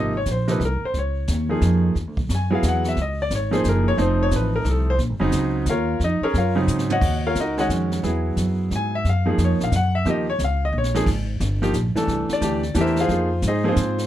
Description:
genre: jazz piano trio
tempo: 178 BPM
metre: 3/4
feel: swing 64% on 8ths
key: Bb minor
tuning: A4 = 440 Hz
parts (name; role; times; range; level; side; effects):
- clear baby grand piano; melody; 0.0-14.1 s; C3 to G#5; -22 LUFS; equal; none
- upright bass; bass; 0.0-14.1 s; F1 to Ab2; -22 LUFS; equal; none
- jazz brush drum kit; drums; 0.3-14.1 s; brushed snare drum, crash cymbal, hi-hat, kick drum, snare drum, toms; -29 LUFS; right 1 dB; none
room: little or no reverb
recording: dark, warm production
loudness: -19 LUFS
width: side -12 dB against mid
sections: 0.0-7.0 A section; 7.0-14.1 A section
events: grand piano solo 0.0-14.1; drum fill 6.7-7.0, 10.7-11.1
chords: 0.0 Ab; 0.9 Db; 2.0 Eadd9; 3.0 Gb69; 4.0 F7; 5.0 Bbm7; 7.0 Ebm9; 8.0 Eadd9; 9.0 Gbmaj7; 10.1 Eb7(no3); 11.1 Absus2; 12.1 C; 13.1 Fm7

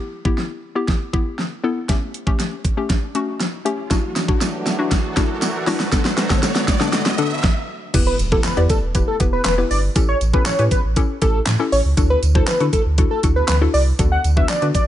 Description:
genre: dance-pop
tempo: 119 BPM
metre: 4/4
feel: straight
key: E minor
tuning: A4 = 443 Hz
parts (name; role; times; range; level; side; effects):
- hollow square pluck; accompaniment; 0.0-14.8 s; D3 to D5; -24 LUFS; left 5 dB; chorus, sidechain pumping
- riser and impact; sound effects; 2.5-10.0 s; none; -29 LUFS; right 1 dB; none
- pop drum kit; drums; 0.3-14.9 s; crash cymbal, handclaps, hi-hat, kick drum, snare drum; -19 LUFS; equal; overdrive
- sweeping resonant pad; sustained chords; 3.9-7.4 s; D3 to F#4; -28 LUFS; right 2 dB; chorus, sidechain pumping
- tambourine; percussion; 3.9-14.9 s; none; -36 LUFS; right 8 dB; none
- sub bass with octave; bass; 7.9-14.7 s; E1 to D3; -19 LUFS; equal; sidechain pumping
- wide unison lead; melody; 8.1-14.8 s; A4 to F#5; -21 LUFS; equal; none
room: little or no reverb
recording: nothing above 10.9 kHz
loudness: -16 LUFS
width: side -12 dB against mid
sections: 0.0-7.9 A section; 7.9-14.9 B section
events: build-up 0.0-7.9; drum fill 0.0-7.4; riser 2.5-7.9; stop 7.4-7.9; drop 7.9-14.9; impact 7.9-10.0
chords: 0.0 Em; 1.9 A7; 3.9 Dadd9; 5.9 Bm7/D; 7.9 Em; 10.0 A7; 12.0 Dadd9; 14.0 Bm7/D

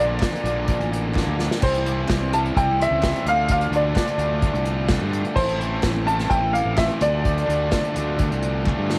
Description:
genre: indie rock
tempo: 128 BPM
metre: 4/4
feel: straight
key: D minor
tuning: A4 = 444 Hz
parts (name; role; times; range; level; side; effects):
- clear upright piano; melody; 0.0-8.6 s; C5 to A5; -26 LUFS; equal; plate reverb
- glockenspiel with rubber mallets; second line; 0.0-8.6 s; G5 to F6; -40 LUFS; equal; cassette tape, plate reverb
- fuzz guitar; riff; 0.0-9.0 s; A2 to F4; -29 LUFS; equal; distortion, cassette tape
- scooped high-gain guitar; riff; 0.0-9.0 s; C3 to F4; -36 LUFS; equal; distortion, lush chorus, cassette tape
- fuzz fingered electric bass; bass; 0.0-9.0 s; A1 to G2; -28 LUFS; equal; overdrive
- unplugged drum kit; drums; 0.2-9.0 s; crash cymbal, hi-hat, kick drum, snare drum, splash cymbal; -27 LUFS; equal; none
- group handclap; percussion; 0.2-8.8 s; none; -41 LUFS; equal; none
room: light reverb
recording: home recording on cassette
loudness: -22 LUFS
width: mono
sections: 0.0-9.0 A section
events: drum fill 1.2-1.6, 8.7-9.0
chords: 0.0 Bbmaj7; 1.6 C; 3.3 Dm7; 5.4 Am; 7.0 Dm7

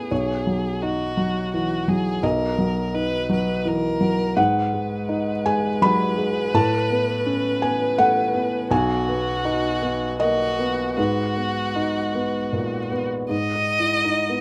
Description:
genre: neoclassical piano and strings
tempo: 76-86 BPM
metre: 3/4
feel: rubato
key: G# minor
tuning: A4 = 440 Hz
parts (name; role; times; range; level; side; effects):
- rich violin; melody; 0.0-14.4 s; F#4 to D#5; -28 LUFS; equal; none
- felt-muted upright piano; accompaniment; 0.0-14.4 s; B1 to B5; -24 LUFS; equal; none
room: light reverb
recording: none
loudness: -22 LUFS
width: mono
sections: 0.0-13.3 A section; 13.3-14.4 B section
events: none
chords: 0.1 G#m7/B; 2.2 Bmaj7; 4.4 G#m7; 6.5 Aadd9; 8.7 G#m7/B; 11.0 G#m7; 13.3 G#5

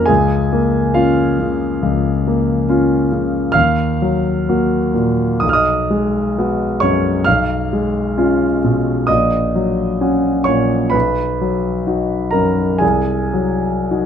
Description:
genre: classical, romantic nocturne for solo piano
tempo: 52-72 BPM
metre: 4/4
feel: rubato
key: F# major from 3.6 s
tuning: A4 = 439 Hz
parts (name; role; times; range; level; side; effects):
- clear concert grand piano; solo; 0.0-14.1 s; A#1 to E#6; -14 LUFS; equal; none
room: light reverb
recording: dark, warm production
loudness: -14 LUFS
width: side -8 dB against mid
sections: 0.0-14.1 A section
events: none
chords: 0.1 Bbm/Db; 3.6 D#m; 5.4 G#m7/B; 7.3 C#7/B; 9.1 F#/A#; 10.9 B; 12.8 Cdim

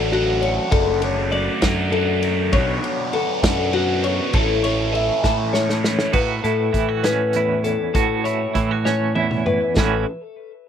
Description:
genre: math rock and midwest emo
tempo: 66 BPM (dotted quarters)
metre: 6/8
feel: straight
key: A major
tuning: A4 = 441 Hz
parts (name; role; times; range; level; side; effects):
- twelve-string electric guitar; arpeggios; 0.0-10.1 s; F#4 to A5; -23 LUFS; left 6 dB; analog delay
- biting overdriven guitar; riff; 0.0-6.1 s; A2 to F#4; -22 LUFS; right 2 dB; phaser
- fuzz picked electric bass; bass; 0.0-10.0 s; F#1 to A2; -24 LUFS; right 1 dB; overdrive
- loose indie drum kit; drums; 0.1-9.9 s; crash cymbal, hi-hat, kick drum, ride cymbal, snare drum, toms; -24 LUFS; equal; none
- clean electric guitar; accompaniment; 6.1-10.1 s; E2 to F#4; -23 LUFS; right 10 dB; tremolo
room: little or no reverb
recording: rough home demo mix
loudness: -17 LUFS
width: side -8 dB against mid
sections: 0.0-6.1 A section; 6.1-9.8 B section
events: drum fill 5.2-6.1, 8.9-9.8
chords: 0.0 D/F#; 2.5 Bm9; 4.3 A; 6.1 A6

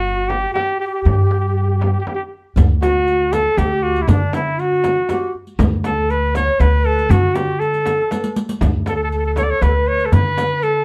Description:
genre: Persian modal ensemble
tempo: 119 BPM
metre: 3/4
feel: straight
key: D dastgah mahur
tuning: A4 = 435 Hz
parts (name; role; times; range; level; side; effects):
- clear flugelhorn; melody; 0.0-10.8 s; D4 to D5; -21 LUFS; equal; plate reverb
- breathy reedy low ney; second line; 0.0-10.8 s; D4 to C#5; -26 LUFS; equal; none
- upright bass; bass; 0.0-10.8 s; G1 to D3; -21 LUFS; equal; none
- frame drum; percussion; 0.3-10.5 s; none; -26 LUFS; equal; none
- tombak; percussion; 0.3-10.5 s; none; -22 LUFS; equal; none
- riq; percussion; 2.6-10.7 s; none; -29 LUFS; equal; none
room: moderate studio reverb, RT60 0.6 s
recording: none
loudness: -17 LUFS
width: mono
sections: 0.0-2.6 A section; 2.6-10.8 B section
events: drum fill 8.1-8.6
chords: none

